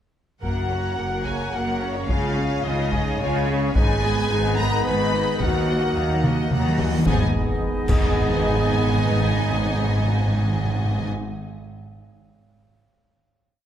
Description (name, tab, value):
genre	cinematic, epic orchestral film score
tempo	109 BPM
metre	3/4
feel	straight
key	G# dorian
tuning	A4 = 442 Hz
part	rich symphonic violin section	melody	0.4-11.1 s	C#5 to B5	-30 LUFS	left 4 dB	none
part	clear studio violin section	second line	0.4-11.1 s	A#4 to B5	-33 LUFS	left 2 dB	none
part	clear symphonic viola section	accompaniment	0.4-11.1 s	F#3 to A#4	-30 LUFS	right 1 dB	none
part	clear trombone section	sustained chords	0.4-10.3 s	C#3 to B3	-33 LUFS	right 4 dB	none
part	mellow French horn section	sustained chords	0.4-10.3 s	C#4 to B4	-29 LUFS	left 2 dB	none
part	warm woodwind section	sustained chords	0.4-10.2 s	G#3 to G#5	-32 LUFS	left 1 dB	none
part	clear symphonic cello section	bass	0.4-11.1 s	D#2 to C#3	-28 LUFS	right 2 dB	none
part	rich symphonic double bass section	bass	0.4-11.1 s	F#1 to D#2	-27 LUFS	right 2 dB	none
part	taiko ensemble	drums	0.4-8.2 s	none	-26 LUFS	left 1 dB	none
part	cymbal swell, concert snare drum, concert bass drum and clash cymbals	percussion	3.8-8.2 s	none	-28 LUFS	equal	none
part	timpani	percussion	3.8-11.1 s	G#2 to D#3	-26 LUFS	left 1 dB	none
part	reverse cymbal and impact	sound effects	6.7-8.7 s	none	-35 LUFS	equal	none
room	moderate scoring stage reverb, RT60 2.1 s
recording	lossy compression artefacts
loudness	-19 LUFS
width	side -10 dB against mid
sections	0.4-7.1 theme; 7.1-10.4 final chord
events	timpani fill 5.4-7.1; drum fill 6.2-7.1; reverse cymbal 6.7-7.1; band accent 7.1-7.6; impact 7.1-8.7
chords	0.4 F#; 2.1 C#; 3.7 G#m; 5.4 D#m; 7.1 G#m